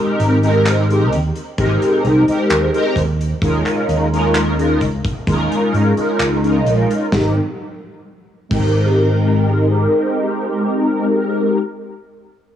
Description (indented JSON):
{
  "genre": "vaporwave",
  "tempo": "65 BPM",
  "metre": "4/4",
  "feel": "straight",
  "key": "Ab major",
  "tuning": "A4 = 439 Hz",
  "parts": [
    { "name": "mellow synth brass", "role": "accompaniment", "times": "0.0-11.6 s", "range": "Ab3 to Bb4", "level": "-16 LUFS", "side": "equal", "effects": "phaser, ensemble chorus, analog delay" },
    { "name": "mellow fretless electric bass", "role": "bass", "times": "0.2-9.9 s", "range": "Ab1 to Ab2", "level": "-17 LUFS", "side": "equal", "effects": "none" },
    { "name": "big rock drum kit", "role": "drums", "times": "0.2-8.8 s", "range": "crash cymbal, handclaps, hi-hat, snare drum", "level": "-27 LUFS", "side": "equal", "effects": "cassette tape" },
    { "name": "kick drum", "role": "drums", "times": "1.6-8.8 s", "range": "none", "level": "-25 LUFS", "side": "equal", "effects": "cassette tape" }
  ],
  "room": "moderate booth ambience, RT60 0.2 s",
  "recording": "home recording on cassette, small room ambience",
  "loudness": "-14 LUFS",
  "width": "side -10 dB against mid",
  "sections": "0.0-7.1 A section; 7.1-10.8 B section",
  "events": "band accent 6.2-6.7",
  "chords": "0.0 Abmaj7; 3.4 Eb9sus4; 7.1 Abmaj7"
}